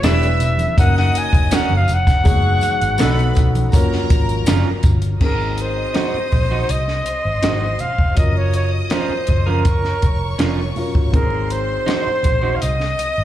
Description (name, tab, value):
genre	lush 1970s-style soul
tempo	81 BPM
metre	4/4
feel	straight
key	F# major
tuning	A4 = 441 Hz
part	breathy flugelhorn	melody	0.0-13.2 s	Bb4 to G#5	-22 LUFS	equal	slapback echo
part	rich chamber string section	second line	0.0-13.2 s	A#4 to E6	-29 LUFS	left 1 dB	slapback echo
part	warm concert grand piano	accompaniment	0.0-13.2 s	E#3 to B4	-26 LUFS	left 4 dB	slapback echo
part	electric guitar through a small old amp	riff	0.0-12.6 s	B3 to C5	-26 LUFS	right 6 dB	slapback echo
part	vintage muted fingered electric bass	bass	0.0-13.2 s	E1 to C2	-19 LUFS	equal	none
part	compact cocktail drum kit	drums	0.0-13.2 s	crash cymbal, hi-hat, kick drum, snare drum	-18 LUFS	equal	none
part	congas	percussion	0.0-13.0 s	none	-30 LUFS	right 5 dB	none
part	tambourine	percussion	0.0-5.0 s	none	-36 LUFS	left 2 dB	none
room	small room ambience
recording	live gig heard through the venue's PA, club reverb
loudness	-15 LUFS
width	side -12 dB against mid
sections	0.0-5.2 A section; 5.2-13.2 B section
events	none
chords	0.0 Em7; 0.8 D#m7; 2.3 G#m7/F#; 3.0 B7; 3.7 F#maj7; 5.2 Ab7; 8.2 Gbmaj7; 11.1 Ab7